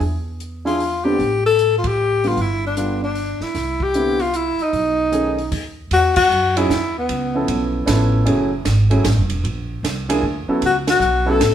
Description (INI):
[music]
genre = jazz, small-group swing and bop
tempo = 153 BPM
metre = 3/4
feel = swing 65% on 8ths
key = E major from 5.9 s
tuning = A4 = 440 Hz
[part]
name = upright bass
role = bass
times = 0.0-11.5 s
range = E1 to F#2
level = -22 LUFS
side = right 1 dB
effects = none
[part]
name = compact cocktail drum kit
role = drums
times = 0.0-11.5 s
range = crash cymbal, hi-hat, kick drum, ride cymbal, snare drum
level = -27 LUFS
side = right 2 dB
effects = none
[part]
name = breathy tenor saxophone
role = melody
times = 0.7-7.7, 10.7-11.5 s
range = B3 to A4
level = -18 LUFS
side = left 3 dB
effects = none
[part]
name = warm upright piano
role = accompaniment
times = 0.7-11.4 s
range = D3 to A4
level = -21 LUFS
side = right 2 dB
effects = none
[sound]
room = wet studio reverb, RT60 0.9 s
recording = heard from further back in the room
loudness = -16 LUFS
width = side -10 dB against mid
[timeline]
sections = 0.0-5.9 A section; 5.9-11.5 B section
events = band accent 1.8, 6.1, 10.8; stop 5.5-5.9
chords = 0.0 E7(no3); 1.2 A7(no3); 2.4 G7; 3.5 Cmaj9; 4.7 B13; 5.9 Emaj7sus2; 7.1 C#7alt; 8.3 F#m9; 9.4 A#(#11); 10.6 A69